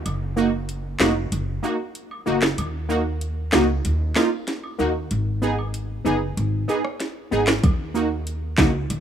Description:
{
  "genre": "dancehall",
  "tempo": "95 BPM",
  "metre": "4/4",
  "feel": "straight",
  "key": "Eb minor",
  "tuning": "A4 = 440 Hz",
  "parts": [
    { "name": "downlifter", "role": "sound effects", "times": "0.0-2.6 s", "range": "none", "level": "-47 LUFS", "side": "right 2 dB", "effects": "none" },
    { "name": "upright bass", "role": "bass", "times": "0.1-9.0 s", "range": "F1 to Eb2", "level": "-25 LUFS", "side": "equal", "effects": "none" },
    { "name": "afro-pop drum kit", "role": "drums", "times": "0.1-9.0 s", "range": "handclaps, hi-hat, kick drum, rim click, snare drum", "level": "-22 LUFS", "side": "equal", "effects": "none" },
    { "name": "woodblock and cabasa", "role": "percussion", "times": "0.1-8.7 s", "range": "none", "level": "-38 LUFS", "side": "right 2 dB", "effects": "none" },
    { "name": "synth brass stab", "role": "accompaniment", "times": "0.4-8.7 s", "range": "Bb3 to Ab4", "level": "-24 LUFS", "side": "right 1 dB", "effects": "chorus, sidechain pumping" }
  ],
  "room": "light reverb, digital ambience",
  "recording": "rough home demo mix",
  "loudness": "-20 LUFS",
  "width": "side -9 dB against mid",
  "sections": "0.0-9.0 A section",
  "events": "break 0.0-7.6; kick muted 6.4-7.6",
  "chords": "0.1 Gb6; 2.6 Ebm; 5.1 Abm; 7.6 Ebm",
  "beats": "| 0.06 0.69 1.32 1.95 | 2.58 3.21 3.85 4.48 | 5.11 5.74 6.37 7.00 | 7.63 8.27 8.90"
}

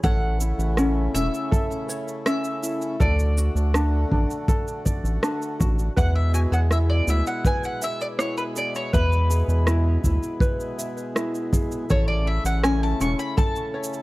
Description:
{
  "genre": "folktronica",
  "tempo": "81 BPM",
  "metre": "4/4",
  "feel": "straight",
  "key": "E mixolydian",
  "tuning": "A4 = 440 Hz",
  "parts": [
    { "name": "bowl-back mandolin", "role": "melody", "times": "0.0-14.0 s", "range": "B4 to C#6", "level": "-29 LUFS", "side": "equal", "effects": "digital delay" },
    { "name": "hand-pumped harmonium", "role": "sustained chords", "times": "0.0-14.0 s", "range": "B2 to F#4", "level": "-32 LUFS", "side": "left 1 dB", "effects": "none" },
    { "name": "ukulele", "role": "arpeggios", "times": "0.0-14.0 s", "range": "C#4 to E5", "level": "-28 LUFS", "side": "left 1 dB", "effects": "digital delay" },
    { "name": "round analog bass", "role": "bass", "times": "0.0-13.2 s", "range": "E1 to E2", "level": "-21 LUFS", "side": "equal", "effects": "none" },
    { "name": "electronic cabasa and rim click", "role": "drums", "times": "0.0-14.0 s", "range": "none", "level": "-29 LUFS", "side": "right 1 dB", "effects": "overdrive" },
    { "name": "kick drum", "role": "drums", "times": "0.0-13.5 s", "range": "none", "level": "-22 LUFS", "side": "equal", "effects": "none" }
  ],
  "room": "studio ambience",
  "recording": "dark, warm production",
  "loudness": "-20 LUFS",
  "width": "side -20 dB against mid",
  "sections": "0.0-14.0 A section",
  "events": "none",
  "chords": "0.0 A; 3.0 D; 6.0 E; 11.9 A",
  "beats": "| 0.04 0.78 1.52 2.26 | 3.00 3.74 4.48 5.22 | 5.96 6.70 7.45 8.19 | 8.93 9.67 10.41 11.15 | 11.89 12.63 13.37"
}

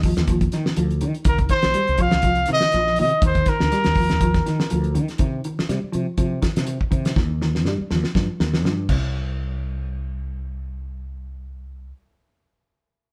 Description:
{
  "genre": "afrobeat",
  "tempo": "122 BPM",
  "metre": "4/4",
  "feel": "swing 55% on 16ths",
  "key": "C minor",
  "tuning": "A4 = 442 Hz",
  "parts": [
    { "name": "mellow fretless electric bass", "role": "bass", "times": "0.0-11.9 s", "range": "Bb1 to Eb3", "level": "-27 LUFS", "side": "equal", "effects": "none" },
    { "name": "damped 70s drum kit", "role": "drums", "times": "0.0-9.0 s", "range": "crash cymbal, hi-hat, kick drum, snare drum", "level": "-25 LUFS", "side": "equal", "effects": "none" },
    { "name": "mellow electric guitar", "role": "arpeggios", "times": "0.1-9.2 s", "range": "C3 to G3", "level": "-29 LUFS", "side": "equal", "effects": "none" },
    { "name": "breathy trumpet", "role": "melody", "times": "1.3-5.0 s", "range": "Bb4 to F5", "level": "-23 LUFS", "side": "equal", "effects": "none" }
  ],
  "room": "moderate studio reverb, RT60 0.8 s",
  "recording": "band playing live in one room",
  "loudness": "-21 LUFS",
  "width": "mono",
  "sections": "0.0-5.2 A section; 5.2-9.1 B section; 9.1-13.1 C section",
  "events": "drum fill 7.2-9.1",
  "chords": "0.0 Ebmaj7(no3); 1.3 Cm7; 3.2 Ebmaj7(no3); 5.2 Cm; 7.2 Eb; 8.9 N.C.",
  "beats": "0.29 0.78 | 1.27 1.76 2.25 2.74 | 3.23 3.72 4.22 4.71 | 5.20 5.69 6.18 6.68 | 7.17 7.67 8.16 8.65 | 9.15 9.64 10.13 10.63 | 11.12 11.62"
}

